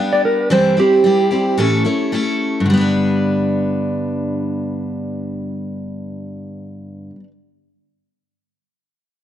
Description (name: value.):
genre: rock.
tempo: 111 BPM.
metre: 4/4.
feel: straight.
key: G major.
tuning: A4 = 440 Hz.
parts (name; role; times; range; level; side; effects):
mellow electric guitar; melody; 0.0-1.8 s; G4 to F5; -16 LUFS; right 2 dB; lush chorus, analog delay.
picked steel-string acoustic guitar; accompaniment; 0.0-7.3 s; G2 to B4; -18 LUFS; left 1 dB; none.
room: light reverb.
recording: dark, warm production.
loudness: -15 LUFS.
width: side -11 dB against mid.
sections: 0.0-2.7 A section; 2.7-7.0 B section.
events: clean electric guitar solo 0.0-2.7.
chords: 0.0 G; 0.5 C/G; 1.6 A; 2.7 G.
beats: | 0.50 1.04 1.59 2.13 | 2.67 3.21 3.75 4.29 | 4.84 5.38 5.92 6.46.